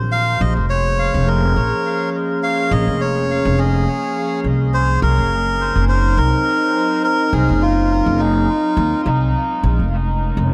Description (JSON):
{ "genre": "ambient dub", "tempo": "104 BPM", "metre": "4/4", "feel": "swing 56% on 16ths", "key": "Bb minor", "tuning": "A4 = 436 Hz", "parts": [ { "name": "warbly tape-like pad", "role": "sustained chords", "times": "0.0-10.5 s", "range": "Eb3 to Eb5", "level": "-24 LUFS", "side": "equal", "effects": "chorus, built-in reverb" }, { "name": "upright bass", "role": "bass", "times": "0.0-10.5 s", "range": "F1 to Eb2", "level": "-20 LUFS", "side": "equal", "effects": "none" }, { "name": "melodica", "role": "melody", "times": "0.1-9.0 s", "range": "Eb4 to F5", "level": "-22 LUFS", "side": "equal", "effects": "dub echo" } ], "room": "moderate scoring stage reverb, RT60 1.6 s, small room ambience", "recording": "none", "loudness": "-17 LUFS", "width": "mono", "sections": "0.0-9.3 A section; 9.3-10.5 A section", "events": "none", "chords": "0.1 Bbm7; 4.7 Cdim; 9.3 Bbm7" }